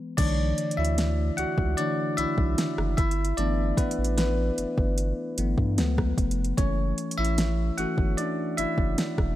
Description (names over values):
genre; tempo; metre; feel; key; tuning
contemporary R&B; 75 BPM; 4/4; straight; B minor; A4 = 444 Hz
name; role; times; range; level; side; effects
bell-like tine electric piano; accompaniment; 0.0-9.4 s; D3 to F#5; -27 LUFS; left 1 dB; phaser
saturated sub bass; bass; 0.2-9.4 s; E1 to G2; -27 LUFS; equal; none
smooth R&B drum kit; drums; 0.2-9.4 s; crash cymbal, hi-hat, kick drum, rim click, snare drum; -27 LUFS; equal; overdrive
room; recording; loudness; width
little or no reverb; none; -23 LUFS; side -14 dB against mid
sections
0.2-9.4 A section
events
break 0.0; tine electric piano solo 0.2-9.4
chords
0.2 Bm11; 3.0 G69; 5.8 C#7b13; 6.6 F#m7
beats
| 0.18 0.98 1.78 2.58 | 3.38 4.18 4.98 5.78 | 6.58 7.38 8.18 8.98